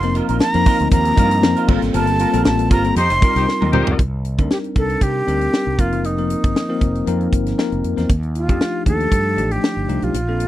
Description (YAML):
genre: polished 1980s jazz-funk pop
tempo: 117 BPM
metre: 4/4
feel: swing 54% on 16ths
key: C dorian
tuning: A4 = 441 Hz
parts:
  - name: breathy concert flute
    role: melody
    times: 0.0-10.5 s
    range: Eb4 to C6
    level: -21 LUFS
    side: right 1 dB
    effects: slapback echo
  - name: bell-like tine electric piano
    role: accompaniment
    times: 0.0-10.5 s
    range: F3 to Bb4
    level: -21 LUFS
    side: left 3 dB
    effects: medium stereo tremolo, wide subtle chorus
  - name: electric guitar at the edge of break-up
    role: riff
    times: 0.0-3.9 s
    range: C4 to C5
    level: -26 LUFS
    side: right 8 dB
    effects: ensemble chorus
  - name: fretless electric bass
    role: bass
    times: 0.0-10.5 s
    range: F1 to C3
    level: -21 LUFS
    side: equal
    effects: none
  - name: tight funk drum kit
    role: drums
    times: 0.0-10.5 s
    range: crash cymbal, hi-hat, kick drum, snare drum, toms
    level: -18 LUFS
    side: equal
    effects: none
  - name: mellow horn section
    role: second line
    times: 3.0-4.0 s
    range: Eb4 to C5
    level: -22 LUFS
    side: left 4 dB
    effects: none
room: little or no reverb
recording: dry, close 1970s-style studio recording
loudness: -15 LUFS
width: side -14 dB against mid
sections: 0.0-4.0 A section; 4.0-10.5 B section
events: band accent 1.9-4.0; drum fill 3.5-4.0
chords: 0.0 F7sus4; 1.7 Gm11; 3.0 F9sus4; 4.0 Cm9; 5.8 F7sus4; 8.1 Ebmaj9#11